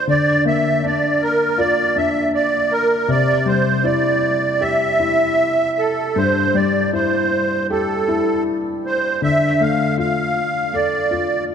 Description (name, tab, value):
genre	children's music, lullaby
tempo	79 BPM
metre	4/4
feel	rubato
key	unclear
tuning	A4 = 440 Hz
part	musette accordion	melody	0.0-11.4 s	A4 to F5	-17 LUFS	right 2 dB	none
part	felt-muted upright piano	accompaniment	0.0-11.5 s	G2 to A4	-20 LUFS	left 3 dB	none
room	wet concert hall reverb, RT60 2.5 s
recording	none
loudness	-16 LUFS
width	side -7 dB against mid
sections	0.0-11.5 A section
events	none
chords	0.1 Bb/D; 3.1 C; 9.2 Dm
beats	| 0.08 0.84 1.58 2.33 | 3.09 3.84 4.61 5.39 | 6.17 6.94 7.71 8.47 | 9.23 9.99 10.74 11.48